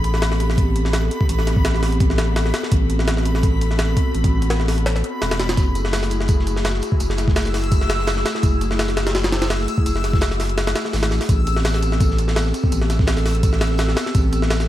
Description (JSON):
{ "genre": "drum and bass, jungle", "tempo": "168 BPM", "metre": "4/4", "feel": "swing 53% on 16ths", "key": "unclear", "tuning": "A4 = 441 Hz", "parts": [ { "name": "airy breathy pad", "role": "sustained chords", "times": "0.0-14.7 s", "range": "A3 to A4", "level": "-25 LUFS", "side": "left 1 dB", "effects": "chorus, vintage 12-bit sampler grit" }, { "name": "saturated sub bass", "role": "bass", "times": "0.0-14.7 s", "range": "E1 to A1", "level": "-20 LUFS", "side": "equal", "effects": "none" }, { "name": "jungle sampler-style drum kit", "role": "drums", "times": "0.0-14.7 s", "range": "hi-hat, kick drum, snare drum", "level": "-20 LUFS", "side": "equal", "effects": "none" }, { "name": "backwards swelling texture", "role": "texture", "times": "0.0-14.7 s", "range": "B5 to E6", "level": "-31 LUFS", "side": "left 1 dB", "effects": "built-in reverb" }, { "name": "crunchy breakbeat drum kit", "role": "drums", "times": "5.6-14.7 s", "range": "hi-hat, snare drum, tambourine", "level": "-35 LUFS", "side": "right 2 dB", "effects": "high-pass filter on hats, high-pass filter on snare, high-pass filter on perc, high-pass filter on room" } ], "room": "small room ambience", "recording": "vinyl crackle", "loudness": "-17 LUFS", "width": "side -13 dB against mid", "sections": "0.0-14.7 A section", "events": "none", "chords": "0.0 Am9; 5.6 F#m9; 11.3 Am9" }